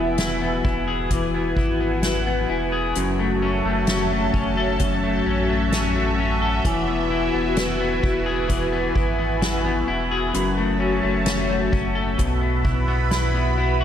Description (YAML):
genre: dream pop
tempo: 65 BPM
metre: 4/4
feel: straight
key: E major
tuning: A4 = 443 Hz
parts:
  - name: phased analog pad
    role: sustained chords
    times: 0.0-13.8 s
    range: F#4 to B5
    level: -26 LUFS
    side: right 1 dB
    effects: phaser, chorus, shimmer reverb
  - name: electric guitar at the edge of break-up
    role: arpeggios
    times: 0.0-13.8 s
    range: F#2 to A4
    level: -23 LUFS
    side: left 3 dB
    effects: lush chorus, tape echo, shimmer reverb
  - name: sub bass with octave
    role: bass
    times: 0.0-13.8 s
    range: E1 to B1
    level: -26 LUFS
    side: equal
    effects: none
  - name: soft-mallet drum kit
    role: drums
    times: 0.2-13.3 s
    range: hi-hat, kick drum, snare drum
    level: -26 LUFS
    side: equal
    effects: none
  - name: glassy synth bell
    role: texture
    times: 6.7-12.6 s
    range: G#5 to B5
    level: -38 LUFS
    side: right 5 dB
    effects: none
room: moderate lush hall reverb, RT60 2.8 s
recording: none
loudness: -19 LUFS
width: side -9 dB against mid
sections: 0.0-13.8 A section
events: none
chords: 0.0 Eadd9; 3.0 F#m7; 6.6 Eadd9; 10.3 F#m7; 12.2 Bsus4